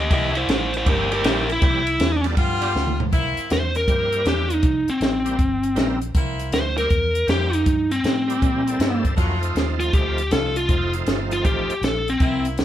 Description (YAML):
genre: electric blues shuffle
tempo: 159 BPM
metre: 4/4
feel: swing 66% on 8ths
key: C mixolydian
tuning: A4 = 440 Hz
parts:
  - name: biting lead guitar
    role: melody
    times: 0.0-12.5 s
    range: C4 to Eb5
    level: -22 LUFS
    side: equal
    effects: overdrive
  - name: vintage muted fingered electric bass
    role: bass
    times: 0.0-12.6 s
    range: F1 to Bb2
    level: -26 LUFS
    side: equal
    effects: none
  - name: edgy saxophone section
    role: stabs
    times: 0.1-12.6 s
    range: G3 to G4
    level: -28 LUFS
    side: left 1 dB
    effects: none
  - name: compact cocktail drum kit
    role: drums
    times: 0.1-12.6 s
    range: hi-hat, kick drum, ride cymbal, snare drum, toms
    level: -22 LUFS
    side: equal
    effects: none
  - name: bright tonewheel organ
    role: accompaniment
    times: 0.8-11.7 s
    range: F3 to Bb4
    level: -29 LUFS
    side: right 3 dB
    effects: slow rotary speaker, overdrive, chorus vibrato
room: light reverb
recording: band playing live in one room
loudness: -18 LUFS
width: side -12 dB against mid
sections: 0.0-3.1 A section; 3.1-12.6 B section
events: lead electric guitar solo 0.0-3.1; drum fill 2.7-3.1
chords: 0.1 C7; 2.4 G7; 3.1 C7; 9.2 F7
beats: | 0.10 0.48 0.86 1.24 | 1.61 1.99 2.37 2.75 | 3.12 3.50 3.88 4.26 | 4.63 5.01 5.39 5.77 | 6.14 6.52 6.90 7.28 | 7.66 8.04 8.41 8.79 | 9.17 9.55 9.93 10.31 | 10.69 11.06 11.44 11.82 | 12.20 12.58